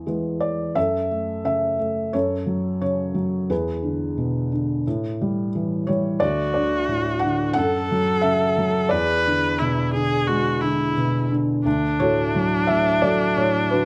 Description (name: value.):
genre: acoustic folk-pop ballad.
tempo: 88 BPM.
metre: 4/4.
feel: straight.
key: unclear.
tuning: A4 = 440 Hz.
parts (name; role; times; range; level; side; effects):
felt-muted upright piano; melody; 0.0-13.8 s; D2 to F#5; -23 LUFS; equal; none.
clear viola; second line; 6.2-13.8 s; D4 to B4; -26 LUFS; equal; none.
room: light reverb.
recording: close, detailed microphones.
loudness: -22 LUFS.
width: mono.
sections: 0.8-11.7 A section; 11.7-13.8 B section.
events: none.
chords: 0.0 E; 0.8 F#m; 3.5 E7; 4.9 A5; 6.2 D; 7.6 F#m; 8.9 E7; 11.7 Dmaj7.